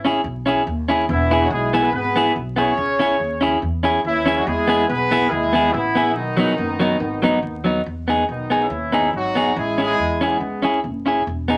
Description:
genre	ska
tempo	142 BPM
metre	4/4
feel	swing 56% on 8ths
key	E major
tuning	A4 = 440 Hz
part	warm horn section	melody	0.0-10.7 s	D#3 to C#5	-24 LUFS	equal	none
part	clean electric guitar	accompaniment	0.0-11.6 s	F#3 to G#4	-21 LUFS	equal	analog delay
part	upright bass	bass	0.0-11.6 s	E1 to E2	-29 LUFS	equal	none
room	wet club ambience, RT60 0.5 s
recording	vinyl crackle, nothing above 10.3 kHz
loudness	-20 LUFS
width	mono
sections	0.0-7.9 A section; 7.9-11.6 B section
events	none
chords	0.0 C#m; 1.1 E; 2.8 C#m; 4.5 E; 6.2 B; 7.9 Emaj7; 9.6 Amaj7

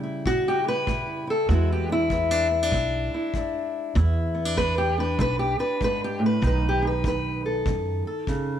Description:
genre	acoustic country blues, solo or duo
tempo	97 BPM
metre	4/4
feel	swing 62% on 8ths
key	unclear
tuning	A4 = 440 Hz
part	fingerpicked steel-string acoustic guitar	melody	0.0-8.6 s	E2 to B4	-24 LUFS	left 1 dB	none
part	kick drum	drums	0.3-8.5 s	none	-31 LUFS	left 1 dB	none
part	upright bass	bass	1.5-8.0 s	B1 to F#2	-25 LUFS	right 1 dB	none
room	light reverb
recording	1960s-style stereo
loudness	-22 LUFS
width	side -10 dB against mid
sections	0.0-8.6 A section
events	none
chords	0.0 A#dim7; 1.5 E7; 6.4 B7

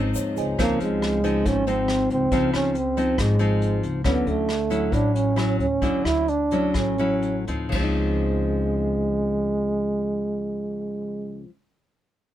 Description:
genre	bossa nova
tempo	118-139 BPM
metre	4/4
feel	straight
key	Db major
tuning	A4 = 437 Hz
part	breathy trombone	melody	0.0-11.5 s	Ab3 to E4	-24 LUFS	right 2 dB	none
part	mellow tine electric piano	accompaniment	0.0-0.6 s	F4 to Ab5	-29 LUFS	right 4 dB	medium stereo tremolo
part	nylon-string guitar	accompaniment	0.0-11.6 s	Ab2 to E4	-26 LUFS	left 3 dB	none
part	muted studio string section	sustained chords	0.0-0.6 s	C5 to Bb5	-42 LUFS	left 5 dB	none
part	upright bass	bass	0.0-11.4 s	Ab1 to Eb2	-28 LUFS	equal	none
part	tube shaker	percussion	0.1-0.6 s	none	-37 LUFS	left 8 dB	none
part	vintage brush drum kit	drums	0.2-7.8 s	crash cymbal, hi-hat, kick drum, rim click	-30 LUFS	equal	none
room	light reverb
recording	none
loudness	-21 LUFS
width	side -12 dB against mid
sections	0.6-7.7 A section; 7.7-11.8 B section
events	tine electric piano fill 0.0-0.6; slowing down 4.0-7.7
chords	0.0 Dbmaj9; 4.0 Dmaj9; 7.7 Dbmaj9

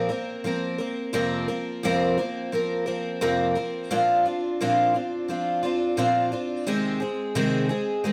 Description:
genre	rock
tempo	87 BPM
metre	4/4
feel	straight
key	unclear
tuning	A4 = 440 Hz
part	picked twelve-string acoustic guitar	solo	0.0-8.1 s	F2 to Bb4	-25 LUFS	equal	none
room	moderate large studio reverb, RT60 0.9 s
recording	none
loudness	-25 LUFS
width	mono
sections	0.0-1.1 A section; 1.1-8.1 B section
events	none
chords	0.0 Bbsus2; 1.1 Fsus4; 3.9 Bbadd9; 6.7 Ab/C

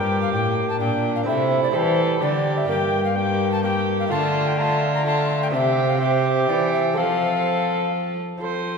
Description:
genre	classical, renaissance-style consort dance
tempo	126 BPM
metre	3/4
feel	straight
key	F major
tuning	A4 = 440 Hz
part	tenor recorder	melody	0.0-8.8 s	A4 to Bb5	-25 LUFS	left 4 dB	none
part	dark violin	second line	0.0-8.8 s	D4 to C5	-25 LUFS	right 3 dB	none
part	lute	accompaniment	0.0-8.8 s	G2 to F5	-29 LUFS	right 3 dB	none
part	mellow bassoon	accompaniment	0.0-8.8 s	G3 to C4	-27 LUFS	equal	none
part	rich cello	bass	0.0-8.8 s	G2 to F3	-24 LUFS	equal	none
room	wet concert hall reverb, RT60 1.9 s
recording	recorded in a church or concert hall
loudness	-19 LUFS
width	side -5 dB against mid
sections	0.0-8.4 A section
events	none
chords	0.0 Gm; 1.3 C; 2.7 Gm; 4.1 Dm; 5.5 C; 7.0 F

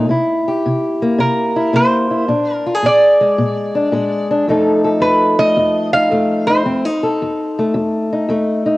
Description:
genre	blues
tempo	110 BPM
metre	4/4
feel	swing 68% on 8ths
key	F mixolydian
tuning	A4 = 440 Hz
part	fingerpicked acoustic archtop guitar	accompaniment	0.0-8.8 s	F2 to A4	-15 LUFS	left 1 dB	none
part	lap resonator guitar	melody	1.2-8.6 s	Bb4 to F5	-15 LUFS	right 1 dB	cassette tape
room	light reverb, small room ambience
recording	home recording on cassette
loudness	-13 LUFS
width	side -19 dB against mid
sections	0.0-8.8 A section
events	none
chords	0.1 C7; 2.3 Bb7; 4.5 F7

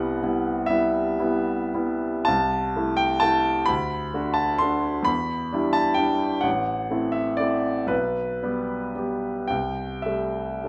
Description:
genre	classical, romantic nocturne for solo piano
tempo	33-44 BPM (dotted quarters)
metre	6/8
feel	rubato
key	unclear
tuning	A4 = 440 Hz
part	warm baby grand piano	solo	0.0-10.7 s	A1 to C6	-24 LUFS	equal	none
room	moderate large studio reverb, RT60 1.1 s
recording	heard from further back in the room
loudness	-24 LUFS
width	mono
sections	0.0-10.7 A section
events	none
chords	0.0 Cmaj7; 2.3 Am/C; 3.7 D; 5.1 Em7; 6.5 Am; 7.9 G/B; 9.5 Am7/C

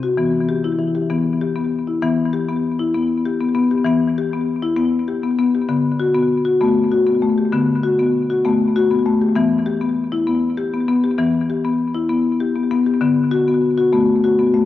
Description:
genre	world meditative, meditative tuned percussion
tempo	65 BPM (dotted quarters)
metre	6/8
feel	straight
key	E minor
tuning	A4 = 440 Hz
part	marimba with medium hard mallets	solo	0.0-14.7 s	C3 to G4	-16 LUFS	left 3 dB	cassette tape, analog delay
room	light reverb, studio reverb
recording	home recording on cassette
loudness	-16 LUFS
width	side -13 dB against mid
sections	0.0-2.0 A section; 2.0-14.7 B section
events	none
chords	0.2 Em; 5.7 D; 9.4 Em; 13.0 D

